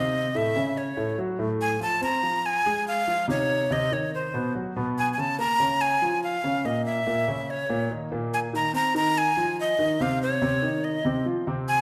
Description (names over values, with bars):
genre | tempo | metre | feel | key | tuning
jazz | 143 BPM | 4/4 | straight | Ab major | A4 = 440 Hz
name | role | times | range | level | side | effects
breathy bright jazz flute | melody | 0.0-11.8 s | C5 to Bb5 | -27 LUFS | equal | none
warm concert grand piano | accompaniment | 0.0-11.8 s | A2 to C5 | -30 LUFS | equal | none
room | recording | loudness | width
wet large studio reverb, RT60 1.4 s | none | -25 LUFS | mono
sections
0.0-11.8 A section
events
none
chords
0.3 A; 1.2 Gbmmaj7/A; 2.0 Dbmaj9; 3.7 Cmmaj7; 4.5 Bsus2; 5.4 Bbm7; 7.1 Eb5; 8.7 Ab6 (rootless)